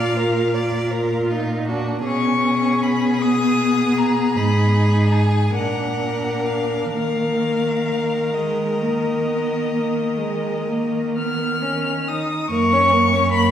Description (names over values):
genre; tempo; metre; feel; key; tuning
classical, slow romantic movement for string quartet; 40-53 BPM (dotted quarters); 12/8; rubato; Eb minor; A4 = 440 Hz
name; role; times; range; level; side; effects
warm violin; melody; 0.0-13.5 s; Eb5 to F6; -24 LUFS; left 3 dB; none
clear violin; second line; 0.0-13.5 s; F4 to D5; -24 LUFS; left 2 dB; none
warm viola; accompaniment; 0.0-13.5 s; Ab3 to F4; -24 LUFS; right 2 dB; none
rich cello; bass; 0.0-13.5 s; F#2 to Eb3; -22 LUFS; equal; none
room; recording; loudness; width
wet recital hall reverb, RT60 1.8 s; heard from further back in the room; -17 LUFS; side -10 dB against mid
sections
0.0-12.5 A section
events
none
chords
0.0 Bb; 2.1 B; 4.4 Abm; 5.6 Bb; 6.9 Eb5; 12.5 F#